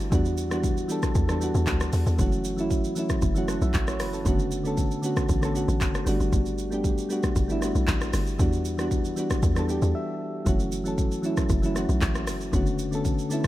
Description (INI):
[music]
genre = amapiano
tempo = 116 BPM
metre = 4/4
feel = straight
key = B minor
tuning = A4 = 440 Hz
[part]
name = soft electric-piano-like synth keys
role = accompaniment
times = 0.0-13.5 s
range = D3 to A5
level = -27 LUFS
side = equal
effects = chorus
[part]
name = hollow log drum bass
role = bass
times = 0.0-13.3 s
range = F#1 to E2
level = -27 LUFS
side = equal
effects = none
[part]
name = deep house drum kit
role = drums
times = 0.1-13.5 s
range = handclaps, hi-hat, kick drum, rim click, shaker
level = -27 LUFS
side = equal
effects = none
[sound]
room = light reverb, digital ambience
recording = none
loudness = -23 LUFS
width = side -15 dB against mid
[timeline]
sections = 0.0-13.5 A section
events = synth keys fill 9.7-10.5, 13.1-13.5; break 9.9-10.5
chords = 0.1 Em9; 2.2 F#m7; 4.3 Bm9/F#; 6.1 Gmaj9; 8.4 Em9; 10.5 F#m7; 12.5 Bm9/F#